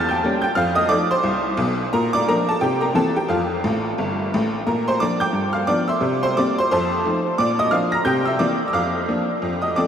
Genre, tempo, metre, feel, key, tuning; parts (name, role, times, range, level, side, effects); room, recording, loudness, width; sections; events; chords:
jazz, stride piano; 176 BPM; 4/4; swing 61% on 8ths; Bb major; A4 = 440 Hz
tack piano; solo; 0.0-9.9 s; G1 to Bb6; -18 LUFS; equal
wet huge ambient reverb, RT60 8.7 s; in a vast, echoing space; -18 LUFS; side -8 dB against mid
0.0-4.7 A section; 4.7-9.9 B section
honky-tonk piano fill 3.6-4.7
0.0 Edim7; 0.6 F7; 1.9 Bb; 2.6 C7; 3.3 F; 4.7 Bb; 5.3 G7; 6.0 C7; 6.7 F7; 7.4 Bb; 8.1 C7; 8.7 Bb/F